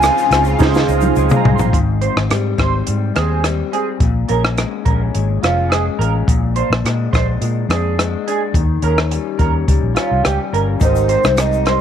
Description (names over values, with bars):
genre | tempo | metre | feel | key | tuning
indie pop, bedroom pop | 106 BPM | 4/4 | straight | Ab major | A4 = 441 Hz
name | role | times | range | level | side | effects
warbly nostalgic lead | melody | 0.0-1.2, 10.8-11.8 s | C5 to Ab5 | -17 LUFS | right 1 dB | wide subtle chorus, tape echo
electric guitar through a small old amp | accompaniment | 0.0-11.8 s | Ab2 to F4 | -23 LUFS | left 15 dB | wide subtle chorus, vibrato effect
warbly lo-fi synth keys | accompaniment | 0.0-1.8, 10.8-11.8 s | Eb4 to C6 | -20 LUFS | right 13 dB | chorus, cassette tape
lush unison pad | sustained chords | 0.0-1.7 s | Db3 to F4 | -26 LUFS | left 1 dB | chorus, phaser
vintage muted fingered electric bass | bass | 0.0-11.8 s | F1 to Db3 | -18 LUFS | equal | none
compact cocktail drum kit | drums | 0.0-11.8 s | hi-hat, kick drum, rim click, shaker, snare drum, toms | -18 LUFS | equal | none
tube shaker | percussion | 0.0-1.7, 10.8-11.7 s | none | -36 LUFS | left 16 dB | none
electric guitar through a small old amp | second line | 2.0-11.8 s | F4 to C5 | -22 LUFS | right 9 dB | analog chorus, tape echo
room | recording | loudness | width
light reverb, studio reverb | 1960s-style stereo with parts hard left and right | -14 LUFS | side -9 dB against mid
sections
0.0-1.7 A section; 1.7-10.8 B section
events
drum fill 0.6-1.7; synth keys fill 0.6-1.7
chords
0.0 Dbmaj7; 1.7 Abmaj7; 4.0 Bbm7; 6.3 Bb7; 8.5 Eb7; 10.8 Abmaj7